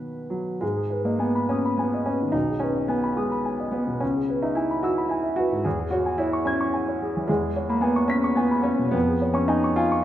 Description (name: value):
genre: classical, romantic character piece for solo piano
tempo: 72 BPM (dotted quarters)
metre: 6/8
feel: rubato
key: G# minor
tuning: A4 = 436 Hz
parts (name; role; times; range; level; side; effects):
- warm grand piano; solo; 0.0-10.0 s; B1 to B6; -22 LUFS; equal; none
room: moderate recital hall reverb, RT60 1.7 s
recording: minimal, uncompressed stereo recording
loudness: -22 LUFS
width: side -12 dB against mid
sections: 0.6-10.0 A section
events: none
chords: 0.0 B; 0.6 G#m; 2.3 G#m/B; 4.0 C#m7; 5.7 C#m/E; 7.3 C#m7/E; 8.9 C#/E#